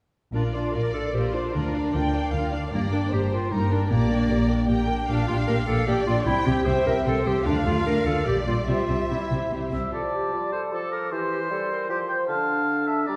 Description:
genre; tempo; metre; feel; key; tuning
quick classical-period movement for symphony orchestra; 152 BPM; 3/4; straight; Bb major, F major from 5.1 s; A4 = 440 Hz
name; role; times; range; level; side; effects
rich studio violin section; melody; 0.3-9.9 s; C5 to Bb5; -40 LUFS; equal; none
bright clarinet; second line; 0.3-13.2 s; Bb3 to C5; -30 LUFS; equal; none
rich studio viola section; accompaniment; 0.3-9.9 s; G3 to D5; -32 LUFS; equal; none
warm studio cello section; bass; 0.3-9.8 s; G2 to D3; -31 LUFS; equal; none
warm studio double bass section; bass; 0.3-9.8 s; G1 to D2; -30 LUFS; equal; none
rich studio violin section; second line; 0.7-9.7 s; Bb4 to G5; -33 LUFS; equal; none
clear oboe; second line; 9.7-13.2 s; G4 to G5; -30 LUFS; equal; none
mellow hollow silver concert flute; second line; 9.9-13.2 s; A5 to D6; -35 LUFS; equal; none
mellow bassoon; accompaniment; 9.9-13.2 s; D3 to G3; -32 LUFS; equal; none
room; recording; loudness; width
wet scoring stage reverb, RT60 2.0 s; heard from further back in the room; -24 LUFS; mono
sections
0.3-9.9 A section; 9.9-13.2 B section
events
none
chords
0.3 Bb; 1.5 Bb/D; 2.7 Gm; 3.9 Gm/Bb; 6.3 C; 7.5 Dm; 8.3 Gm; 8.7 C; 9.9 F; 11.1 C/E; 12.3 Dm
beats
| 0.34 0.74 1.14 | 1.54 1.94 2.34 | 2.73 3.13 3.52 | 3.91 4.30 4.69 | 5.09 5.48 5.87 | 6.27 6.67 7.06 | 7.46 7.86 8.26 | 8.67 9.10 9.51 | 9.93 10.33 10.72 | 11.11 11.50 11.89 | 12.29 12.68 13.08

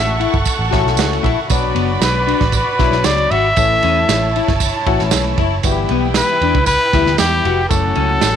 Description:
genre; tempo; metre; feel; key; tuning
uptempo 1960s-style soul; 116 BPM; 4/4; straight; B minor; A4 = 441 Hz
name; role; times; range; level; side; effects
warm trumpet; melody; 0.0-8.4 s; G4 to E5; -17 LUFS; left 1 dB; none
warm symphonic violin section; second line; 0.0-8.4 s; C#4 to C#6; -23 LUFS; right 2 dB; slapback echo
barky tine electric piano; accompaniment; 0.0-8.4 s; E3 to A5; -22 LUFS; left 12 dB; none
vintage muted picked electric bass; bass; 0.0-8.4 s; E#1 to E2; -19 LUFS; right 1 dB; transformer saturation
clean electric guitar; riff; 0.2-8.1 s; B3 to F#4; -23 LUFS; left 15 dB; analog chorus
crunchy breakbeat drum kit; drums; 0.2-8.3 s; kick drum, ride cymbal, snare drum; -20 LUFS; right 4 dB; none
tambourine; percussion; 0.5-8.3 s; none; -26 LUFS; right 17 dB; none
room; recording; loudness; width
light reverb, small room ambience; 1960s-style stereo with parts hard left and right; -13 LUFS; side -8 dB against mid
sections
0.0-8.4 A section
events
tine electric piano fill 0.5-1.5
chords
0.0 F#m7; 1.5 Bm; 3.6 A; 5.6 Em/G; 7.7 F#m7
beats
0.47 0.98 | 1.50 2.02 2.54 3.06 | 3.57 4.09 4.61 5.13 | 5.64 6.16 6.68 7.19 | 7.71 8.23

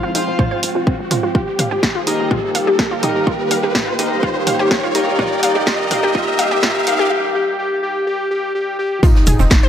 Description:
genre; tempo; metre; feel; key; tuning
melodic techno; 125 BPM; 4/4; straight; unclear; A4 = 440 Hz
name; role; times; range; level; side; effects
fat analog lead; melody; 0.0-9.7 s; C4 to G4; -21 LUFS; left 1 dB; sidechain pumping, digital delay
lush unison pad; sustained chords; 0.0-9.7 s; Eb3 to G4; -28 LUFS; equal; chorus, sidechain pumping
analog pluck; arpeggios; 0.0-9.7 s; C4 to F5; -22 LUFS; equal; chorus, cassette tape, sidechain pumping, dub echo
sync-sweep polysynth; stabs; 0.0-7.1 s; Eb4 to F5; -25 LUFS; equal; chorus, cassette tape, sidechain pumping, dub echo
riser and impact; sound effects; 0.0-9.7 s; none; -23 LUFS; equal; none
ethereal airy pad; texture; 0.0-9.7 s; Eb4 to G5; -28 LUFS; equal; ensemble chorus, built-in reverb, sidechain pumping
tight sequencer bass; bass; 0.1-9.5 s; F1 to C2; -23 LUFS; equal; none
punchy analog drum machine; drums; 0.1-9.6 s; hi-hat, snare drum, toms; -20 LUFS; equal; none
electronic kick drum; drums; 0.4-9.6 s; none; -16 LUFS; equal; none
tambourine and snare drum; drums; 9.0-9.6 s; none; -31 LUFS; right 1 dB; none
egg shaker; percussion; 9.0-9.6 s; none; -32 LUFS; right 2 dB; none
room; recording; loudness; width
moderate lush hall reverb, RT60 1.7 s, digital ambience; high-pass filter; -14 LUFS; side -9 dB against mid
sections
0.0-9.0 A section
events
build-up 0.0-9.0; riser 0.0-7.1; filter sweep on synth arpeggio sound 0.0-9.0; filter sweep on analog synth lead 0.0-9.0; filter sweep on analog synth pad 0.0-9.0; break 7.1-9.0; impact 9.0-9.7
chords
0.0 Fmadd9; 1.3 Eb/F; 9.0 Fmadd9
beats
0.39 0.87 | 1.35 1.83 2.31 2.79 | 3.27 3.75 4.23 4.71 | 5.19 5.67 6.15 6.63 | 7.11 7.59 8.07 8.55 | 9.03 9.51

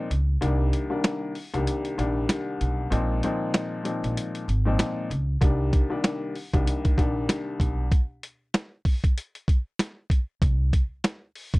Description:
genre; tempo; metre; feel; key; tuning
hip hop, boom-bap hip-hop; 96 BPM; 4/4; swing 58% on 16ths; C minor; A4 = 439 Hz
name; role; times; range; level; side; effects
warm upright piano; accompaniment; 0.0-7.9 s; C2 to D4; -28 LUFS; left 2 dB; cassette tape, high-pass filter, low-pass filter
upright bass; bass; 0.1-11.6 s; Ab1 to Db2; -25 LUFS; equal; none
boom bap sampler-style drum kit; drums; 0.1-11.6 s; hi-hat, kick drum, snare drum; -23 LUFS; equal; none
room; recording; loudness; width
little or no reverb; dark, warm production; -23 LUFS; side -22 dB against mid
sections
0.0-11.6 A section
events
break 0.0-5.4, 7.9-10.4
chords
0.4 Cm7; 2.9 Bb7sus4; 5.4 Cm7; 7.9 N.C.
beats
| 0.41 1.04 1.67 2.29 | 2.92 3.54 4.17 4.79 | 5.42 6.04 6.67 7.29 | 7.92 8.54 9.16 9.79 | 10.41 11.04

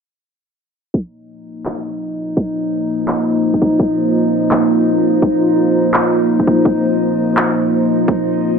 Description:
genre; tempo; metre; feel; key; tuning
half-time drum and bass; 168 BPM; 4/4; swing 56% on 16ths, half-time; unclear; A4 = 442 Hz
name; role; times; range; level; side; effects
deep dark ambient pad; sustained chords; 1.6-8.6 s; Bb3 to C5; -16 LUFS; equal; chorus, built-in reverb, vintage 12-bit sampler grit, sidechain pumping
electronic kick drum; drums; 0.9-8.2 s; none; -16 LUFS; equal; high-pass filter on kick
metallic inharmonic drone; texture; 1.7-8.6 s; Eb4; -18 LUFS; equal; chorus, built-in reverb
electronic handclaps; drums; 1.7-7.4 s; none; -19 LUFS; equal; overdrive
room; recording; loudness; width
wet lush hall reverb, RT60 1.6 s; low-pass filter; -13 LUFS; side -6 dB against mid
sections
0.9-8.6 A section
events
filter sweep 0.9-8.6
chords
0.9 Bb5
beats
| 0.94 1.30 1.65 2.01 | 2.37 2.72 3.08 3.44 | 3.80 4.15 4.51 4.87 | 5.22 5.58 5.94 6.30 | 6.65 7.01 7.37 7.72 | 8.08 8.44

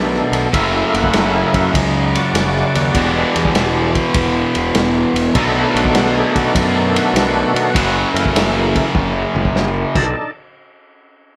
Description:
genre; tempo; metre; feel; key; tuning
blues rock power trio and southern rock; 100 BPM; 4/4; swing 68% on 8ths; unclear; A4 = 440 Hz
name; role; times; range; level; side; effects
overdriven tonewheel organ; sustained chords; 0.0-10.3 s; D#3 to D5; -22 LUFS; equal; chorus vibrato, lush chorus
cranked stack guitar; riff; 0.0-10.0 s; E2 to B3; -19 LUFS; equal; overdrive
fuzz picked electric bass; bass; 0.0-10.1 s; E1 to B2; -24 LUFS; equal; overdrive
vintage drum kit; drums; 0.1-10.0 s; crash cymbal, kick drum, ride cymbal, snare drum, toms; -22 LUFS; equal; none
room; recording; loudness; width
light reverb; none; -16 LUFS; mono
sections
0.0-10.1 A section; 10.1-11.4 B section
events
tonewheel organ solo 0.0-10.1; drum fill 8.9-10.1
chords
0.0 B7#9; 0.5 F#7#9; 2.9 E7#9; 5.3 B7#9; 7.7 F#7#9; 9.8 B7#9; 10.1 D5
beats
| 0.53 1.13 1.73 2.34 | 2.94 3.54 4.14 4.74 | 5.34 5.95 6.54 7.15 | 7.75 8.35 8.95 9.55 | 10.14

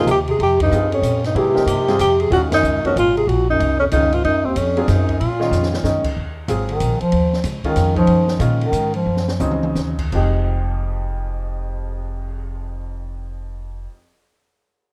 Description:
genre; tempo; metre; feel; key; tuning
modal jazz; 159-188 BPM; 3/4; swing 64% on 8ths; unclear; A4 = 440 Hz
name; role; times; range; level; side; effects
breathy tenor saxophone; melody; 0.0-5.8 s; C4 to Ab4; -20 LUFS; equal; none
mellow bass clarinet; second line; 0.0-9.4 s; Eb2 to F3; -23 LUFS; equal; none
clear baby grand piano; accompaniment; 0.0-13.9 s; F2 to Ab4; -26 LUFS; equal; none
upright bass; bass; 0.0-13.9 s; F1 to Bb2; -24 LUFS; equal; none
open jazz drum kit; drums; 0.1-12.3 s; crash cymbal, cymbal swell, hi-hat, kick drum, ride cymbal, snare drum, toms; -32 LUFS; equal; none
room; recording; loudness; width
moderate large studio reverb, RT60 1.1 s; none; -18 LUFS; mono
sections
0.0-6.2 A section; 6.2-10.1 B section; 10.1-12.4 C section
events
band accent 0.6, 2.5; drum fill 5.5-5.8, 9.1-9.8; bass clarinet solo 6.2-10.1; slowing down 8.1-10.1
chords
0.0 Fm9; 2.3 Ebm9; 10.1 Fm9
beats
0.07 | 0.40 0.71 1.03 | 1.35 1.68 2.00 | 2.31 2.63 2.96 | 3.27 3.60 3.92 | 4.24 4.55 4.88 | 5.20 5.51 5.83 | 6.16 6.47 6.79 | 7.12 7.43 7.76 | 8.08 8.40 8.72 | 9.06 9.40 9.75 | 10.12 10.50 10.88 | 11.26 11.63 12.01

